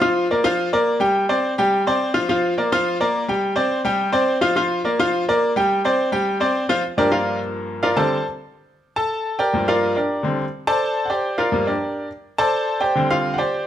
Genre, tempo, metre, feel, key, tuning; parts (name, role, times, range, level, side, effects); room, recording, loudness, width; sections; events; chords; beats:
latin; 211 BPM; 4/4; straight; G minor; A4 = 440 Hz
bright grand piano; solo; 0.0-13.7 s; G2 to A5; -18 LUFS; equal
moderate large studio reverb, RT60 1.1 s; -18 LUFS; side -10 dB against mid
0.0-6.8 A section; 6.8-13.7 B section
grand piano solo 6.8-13.7
0.0 Gm7; 1.2 D7sus4; 2.3 Gm7; 3.4 D7sus4; 4.6 Gm7; 5.7 D7sus4; 6.8 Gm7; 8.0 D7sus4; 9.1 Gm7; 10.2 D7sus4; 11.4 Gm7; 12.5 D7sus4
| 0.02 0.30 0.59 0.87 | 1.16 1.44 1.72 2.01 | 2.29 2.57 2.86 3.14 | 3.42 3.71 3.99 4.28 | 4.56 4.85 5.13 5.41 | 5.70 5.98 6.27 6.55 | 6.83 7.12 7.40 7.69 | 7.97 8.26 8.54 8.82 | 9.11 9.39 9.68 9.96 | 10.25 10.53 10.82 11.10 | 11.38 11.67 11.95 12.24 | 12.52 12.81 13.09 13.38 | 13.66